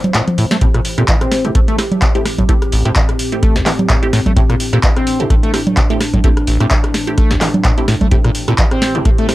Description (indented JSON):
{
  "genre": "acid house",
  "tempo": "128 BPM",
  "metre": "4/4",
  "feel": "swing 56% on 16ths",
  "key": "A minor",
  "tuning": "A4 = 441 Hz",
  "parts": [
    { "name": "warbly tape-like pad", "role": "sustained chords", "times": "0.0-9.3 s", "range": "A2 to C5", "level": "-22 LUFS", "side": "left 1 dB", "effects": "chorus, built-in reverb, sidechain pumping" },
    { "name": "booming analog drum machine", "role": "drums", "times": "0.0-9.3 s", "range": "congas, handclaps, hi-hat, rim click, snare drum, toms", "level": "-18 LUFS", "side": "right 1 dB", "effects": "none" },
    { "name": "acid bass, saw", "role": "riff", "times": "0.1-9.3 s", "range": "A1 to C4", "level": "-18 LUFS", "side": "equal", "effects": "overdrive, lush chorus, sidechain pumping, tape echo" },
    { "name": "filtered dub chord stab", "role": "stabs", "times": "0.6-9.3 s", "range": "A3 to G4", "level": "-23 LUFS", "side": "right 2 dB", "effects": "phaser, tape echo" },
    { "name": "electronic kick drum", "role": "drums", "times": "0.6-9.2 s", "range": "none", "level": "-14 LUFS", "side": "equal", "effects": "none" }
  ],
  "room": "light reverb",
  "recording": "dry, gritty hardware recording",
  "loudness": "-11 LUFS",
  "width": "side -17 dB against mid",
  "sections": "0.6-9.3 A section",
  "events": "kick drops out 0.1-0.6; drum fill 0.1-0.6; drop 0.6-9.3",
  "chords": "0.0 Am; 0.6 Am7"
}